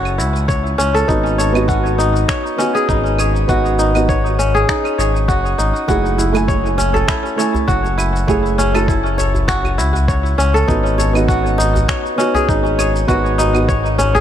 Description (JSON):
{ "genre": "organic downtempo", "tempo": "100 BPM", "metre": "4/4", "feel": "swing 55% on 16ths", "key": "unclear", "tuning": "A4 = 440 Hz", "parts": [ { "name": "kora", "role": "arpeggios", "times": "0.0-14.2 s", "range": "C#4 to C#5", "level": "-17 LUFS", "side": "left 1 dB", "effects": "tape echo, shimmer reverb" }, { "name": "smooth gliding synth bass", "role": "bass", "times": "0.0-14.2 s", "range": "F#1 to C#2", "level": "-18 LUFS", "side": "equal", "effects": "sidechain pumping" }, { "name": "electronic claves, shaker and finger snaps", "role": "drums", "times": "0.1-14.2 s", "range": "none", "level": "-26 LUFS", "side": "equal", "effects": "studio reverb, dub echo" }, { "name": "electronic kick drum", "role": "drums", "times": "0.5-13.8 s", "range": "none", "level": "-20 LUFS", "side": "equal", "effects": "studio reverb" }, { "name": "felt-muted upright piano", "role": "accompaniment", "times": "1.1-13.7 s", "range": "A3 to G#5", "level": "-20 LUFS", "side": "right 4 dB", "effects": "sidechain pumping, dub echo, shimmer reverb" }, { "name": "djembe", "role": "percussion", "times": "5.9-14.2 s", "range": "none", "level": "-27 LUFS", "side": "right 1 dB", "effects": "none" } ], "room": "light reverb, studio ambience", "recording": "echo-heavy mix", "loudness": "-13 LUFS", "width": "side -10 dB against mid", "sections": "0.0-14.2 A section", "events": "none", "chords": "0.0 F#m7; 1.1 G#m7; 5.9 F#m9; 10.7 G#m7" }